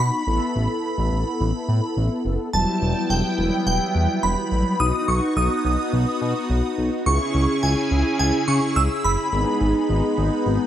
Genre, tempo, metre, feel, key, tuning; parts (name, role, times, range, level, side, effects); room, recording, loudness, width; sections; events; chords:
synth-pop; 106 BPM; 4/4; straight; A4 = 440 Hz
shimmering bell with halo; melody; 0.0-10.7 s; G5 to E6; -25 LUFS; right 2 dB; ensemble chorus, phaser, tape echo
mellow synth brass; accompaniment; 0.0-10.7 s; F#3 to A4; -25 LUFS; left 1 dB; chorus
smooth synth bass; bass; 0.0-10.6 s; E1 to C#3; -22 LUFS; equal
phased analog pad; sustained chords; 2.5-10.7 s; C#3 to G5; -26 LUFS; equal; phaser, chorus
moderate echo chamber reverb, RT60 1.3 s; -19 LUFS; side -11 dB against mid
0.0-2.5 A section; 2.5-10.7 B section
0.3 Asus2; 2.5 Emadd9; 4.8 B; 7.1 C#m; 9.3 G#m